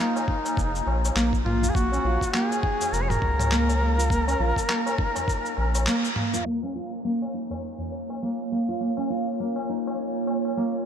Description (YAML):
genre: organic downtempo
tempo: 102 BPM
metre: 4/4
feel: swing 57% on 16ths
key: Bb minor pentatonic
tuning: A4 = 439 Hz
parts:
  - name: clear duduk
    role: melody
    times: 0.0-5.9 s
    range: Eb4 to Db5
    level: -28 LUFS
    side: equal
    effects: diffuse ambient delay
  - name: nylon-string guitar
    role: arpeggios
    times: 0.0-10.7 s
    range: Bb3 to F4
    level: -28 LUFS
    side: equal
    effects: low-pass filter, diffuse ambient delay
  - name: dusty soul sampler-style drum kit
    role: drums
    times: 0.2-6.4 s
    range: cabasa, handclaps, toms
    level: -31 LUFS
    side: equal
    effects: overdrive, low-pass filter on perc, low-pass filter on snare, low-pass filter on toms
  - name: tabla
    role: percussion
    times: 0.2-10.8 s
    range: none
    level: -36 LUFS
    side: left 3 dB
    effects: none
  - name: electronic kick drum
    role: drums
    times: 0.3-5.4 s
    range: none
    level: -27 LUFS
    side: equal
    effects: overdrive
  - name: round analog bass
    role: bass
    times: 0.6-5.9 s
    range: F1 to Db2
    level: -25 LUFS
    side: equal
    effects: tube saturation, sidechain pumping
  - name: warbly tape-like pad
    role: sustained chords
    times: 7.4-10.9 s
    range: Bb3 to Db5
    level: -29 LUFS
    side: right 3 dB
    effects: chorus, built-in reverb, sidechain pumping
room: moderate huge ambient reverb, RT60 8.7 s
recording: dreamy mix soaked in reverb, low-pass filter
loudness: -23 LUFS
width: side -8 dB against mid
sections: 0.0-6.5 A section; 6.5-10.9 B section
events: kick drops out 5.9-6.5; band accent 5.9; filter sweep 6.5-10.9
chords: 0.0 N.C.; 1.8 Bbm